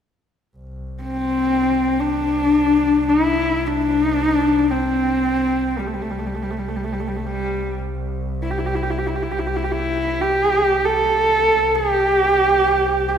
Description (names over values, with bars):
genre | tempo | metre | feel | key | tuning
mongolian traditional | free time | none | none | C gong mode | A4 = 439 Hz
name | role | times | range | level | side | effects
clear double bass | drone | 0.6-13.2 s | C2 | -28 LUFS | equal | none
warm horsehead fiddle | melody | 1.0-13.2 s | G3 to A4 | -17 LUFS | equal | none
room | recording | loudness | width
wet concert hall reverb, RT60 2.1 s | recorded in a church or concert hall | -17 LUFS | side -8 dB against mid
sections
0.6-13.2 A section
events
none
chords
none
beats
free time